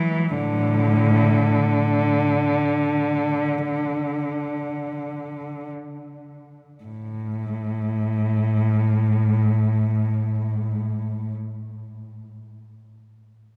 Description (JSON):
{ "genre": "classical, free, expressive piece for unaccompanied cello", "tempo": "free time", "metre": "none", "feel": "none", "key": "unclear", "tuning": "A4 = 440 Hz", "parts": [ { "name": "warm cello", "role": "solo", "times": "0.0-11.3 s", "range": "A2 to E3", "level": "-23 LUFS", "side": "equal", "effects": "none" } ], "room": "wet cathedral reverb, RT60 4.4 s", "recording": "none", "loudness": "-22 LUFS", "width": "mono", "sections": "0.0-6.8 A section; 6.8-13.6 B section", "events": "slowing down 0.0-6.8", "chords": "none" }